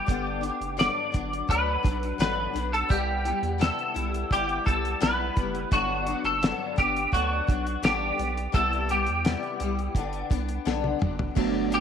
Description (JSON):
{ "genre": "indie pop, bedroom pop", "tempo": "85 BPM", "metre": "4/4", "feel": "straight", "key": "G major", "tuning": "A4 = 441 Hz", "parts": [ { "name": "clean electric guitar", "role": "melody", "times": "0.0-11.8 s", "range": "F#4 to D5", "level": "-27 LUFS", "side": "equal", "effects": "ensemble chorus" }, { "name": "picked steel-string acoustic guitar", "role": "accompaniment", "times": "0.0-11.8 s", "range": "G2 to E4", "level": "-31 LUFS", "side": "left 10 dB", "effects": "ensemble chorus, warbly pitch drift" }, { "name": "round analog bass", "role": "bass", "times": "0.1-11.8 s", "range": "F#1 to E2", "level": "-32 LUFS", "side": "right 2 dB", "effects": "none" }, { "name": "damped 70s drum kit", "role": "drums", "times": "0.1-11.8 s", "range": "crash cymbal, hi-hat, kick drum, snare drum, toms", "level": "-27 LUFS", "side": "equal", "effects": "none" }, { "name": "mellow tine electric piano", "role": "accompaniment", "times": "11.4-11.8 s", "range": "A3 to F#4", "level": "-25 LUFS", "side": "right 16 dB", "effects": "none" } ], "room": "moderate spring reverb, RT60 1.9 s, small room ambience", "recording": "1960s-style stereo with parts hard left and right", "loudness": "-24 LUFS", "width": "side -8 dB against mid", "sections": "0.0-11.4 A section", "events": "drum fill 10.7-11.4", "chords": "0.1 Gmaj7; 2.9 Cmaj7; 5.7 Gmaj7; 8.5 Cmaj7; 10.0 Gmaj7" }